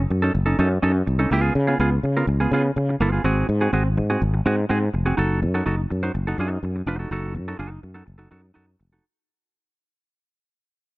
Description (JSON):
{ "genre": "disco", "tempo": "124 BPM", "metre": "4/4", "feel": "straight", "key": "unclear", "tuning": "A4 = 440 Hz", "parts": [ { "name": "semi-hollow electric guitar", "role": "accompaniment", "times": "0.0-9.0 s", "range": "Cb4 to C5", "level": "-24 LUFS", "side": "right 2 dB", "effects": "none" }, { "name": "sustaining fretless electric bass", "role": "bass", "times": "0.0-9.0 s", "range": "F1 to Db3", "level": "-21 LUFS", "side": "equal", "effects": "none" } ], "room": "little or no reverb", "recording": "dark, warm production", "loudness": "-19 LUFS", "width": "side -20 dB against mid", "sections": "0.0-5.2 A section; 5.2-9.0 B section", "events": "fade-out 5.2-9.0", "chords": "0.0 Gbm6; 1.3 Db7; 3.2 Ab7; 5.2 Gbm6" }